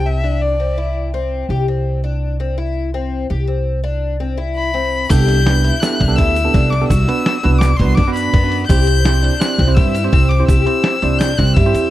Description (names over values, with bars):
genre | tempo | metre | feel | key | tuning
progressive instrumental, band music in an uneven meter | 167 BPM | 5/4 | straight | C lydian | A4 = 441 Hz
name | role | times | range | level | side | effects
rich violin | melody | 0.0-1.0, 4.6-11.9 s | D5 to G6 | -21 LUFS | left 4 dB | tape echo
picked twelve-string acoustic guitar | arpeggios | 0.0-11.9 s | B3 to G4 | -23 LUFS | left 6 dB | none
upright bass | bass | 0.0-11.9 s | C2 to G2 | -16 LUFS | equal | none
bell-like tine electric piano | accompaniment | 5.1-11.9 s | B3 to C5 | -21 LUFS | right 7 dB | fast stereo tremolo
lo-fi sampler-style drum kit | drums | 5.1-11.8 s | crash cymbal, kick drum, ride cymbal, snare drum | -17 LUFS | equal | none
egg shaker | percussion | 5.1-11.9 s | none | -38 LUFS | right 7 dB | none
vibraphone with medium mallets | second line | 11.6-11.9 s | G4 | -18 LUFS | right 4 dB | none
room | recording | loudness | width
little or no reverb | dry, close 1970s-style studio recording | -13 LUFS | side -14 dB against mid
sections
0.0-5.1 A section; 5.1-11.9 B section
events
none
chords
0.0 Cadd9; 5.1 Gadd9/C; 6.9 Bm/C; 8.7 C